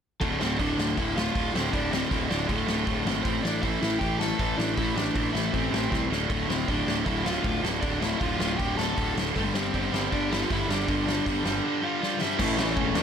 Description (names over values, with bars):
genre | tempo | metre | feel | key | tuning
punk rock | 158 BPM | 4/4 | straight | D minor | A4 = 441 Hz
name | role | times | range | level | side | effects
crunchy overdriven guitar | melody | 0.2-13.0 s | A3 to A5 | -31 LUFS | equal | none
distorted electric guitar | riff | 0.2-13.0 s | D2 to A3 | -31 LUFS | left 13 dB | distortion
overdriven electric guitar | riff | 0.2-13.0 s | D2 to A3 | -30 LUFS | right 15 dB | none
fuzz picked electric bass | bass | 0.2-13.0 s | D1 to E2 | -31 LUFS | equal | overdrive
loose indie drum kit | drums | 0.2-13.0 s | crash cymbal, hi-hat, kick drum, snare drum | -31 LUFS | equal | none
raw garage guitar | riff | 12.4-13.0 s | A2 to A3 | -31 LUFS | right 1 dB | overdrive
room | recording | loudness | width
light reverb | none | -24 LUFS | side -8 dB against mid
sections
0.2-12.4 A section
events
drum fill 5.9-6.3, 12.0-12.4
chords
0.2 Dm; 3.2 Am; 6.1 Dm; 9.3 G5; 12.4 A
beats
| 0.21 0.59 0.97 1.35 | 1.73 2.11 2.49 2.87 | 3.25 3.63 4.01 4.39 | 4.77 5.15 5.53 5.92 | 6.30 6.68 7.06 7.44 | 7.82 8.21 8.59 8.97 | 9.35 9.73 10.11 10.49 | 10.87 11.25 11.63 12.01 | 12.39 12.77